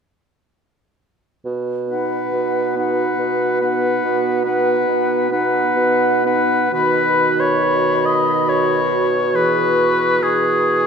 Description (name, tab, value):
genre	classical, slow romantic movement for wind quintet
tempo	68 BPM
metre	3/4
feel	uneven beats, rubato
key	B major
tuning	A4 = 439 Hz
part	mellow bassoon	bass	1.5-10.9 s	B2	-21 LUFS	right 3 dB	none
part	silver concert flute	melody	1.9-10.9 s	F#5 to C#6	-23 LUFS	left 5 dB	none
part	warm oboe	second line	1.9-10.9 s	G#4 to D#5	-19 LUFS	left 3 dB	none
part	mellow French horn	accompaniment	1.9-10.9 s	D#3 to B3	-25 LUFS	right 1 dB	none
part	warm clarinet	accompaniment	1.9-10.9 s	D#4 to G#4	-25 LUFS	right 6 dB	none
room	wet concert hall reverb, RT60 2.3 s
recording	recorded in a church or concert hall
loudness	-15 LUFS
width	side -6 dB against mid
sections	1.4-6.7 A section; 6.7-10.9 B section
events	none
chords	1.4 B; 9.3 C#m7/B